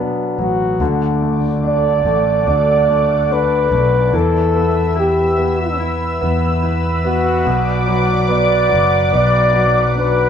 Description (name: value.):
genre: pop.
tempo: 72 BPM.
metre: 4/4.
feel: straight.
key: unclear.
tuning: A4 = 440 Hz.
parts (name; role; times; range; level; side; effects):
breathy flugelhorn; melody; 0.0-10.3 s; D4 to D5; -16 LUFS; right 1 dB; none.
clear concert grand piano; accompaniment; 0.0-10.3 s; B2 to E4; -20 LUFS; left 3 dB; none.
fretless electric bass; bass; 0.4-10.3 s; F#1 to E2; -18 LUFS; right 1 dB; none.
lush unison pad; sustained chords; 0.8-10.3 s; A4 to E6; -21 LUFS; left 1 dB; chorus.
room: wet studio reverb, RT60 0.6 s.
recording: band playing live in one room.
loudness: -13 LUFS.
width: side -8 dB against mid.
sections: 0.8-10.3 A section.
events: none.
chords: 0.0 Bm; 0.8 D; 4.1 Em; 7.5 Bm.